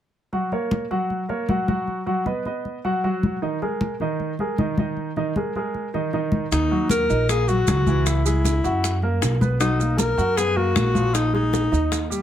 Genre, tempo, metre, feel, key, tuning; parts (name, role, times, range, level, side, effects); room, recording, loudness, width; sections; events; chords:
Afro-Cuban jazz; 155 BPM; 4/4; straight; Eb minor; A4 = 440 Hz
warm baby grand piano; accompaniment; 0.3-12.2 s; Eb3 to Gb5; -25 LUFS; right 1 dB
congas; percussion; 0.3-12.2 s; -26 LUFS; left 1 dB
breathy alto saxophone; melody; 6.5-12.1 s; D#4 to Bb4; -22 LUFS; left 3 dB; plate reverb
upright bass; bass; 6.5-12.2 s; Bb1 to Gb2; -22 LUFS; right 1 dB
bongos; percussion; 6.5-12.1 s; -31 LUFS; left 5 dB
maracas; percussion; 6.5-12.2 s; -32 LUFS; right 9 dB
light reverb; -20 LUFS; side -10 dB against mid
0.3-6.5 A section; 6.5-12.2 B section
0.3 Gb; 1.9 B/F#; 3.4 Bb7sus4; 6.5 Ebm7; 8.1 Dbmadd11; 8.8 Gb; 9.6 Bmaj7; 11.1 Bb5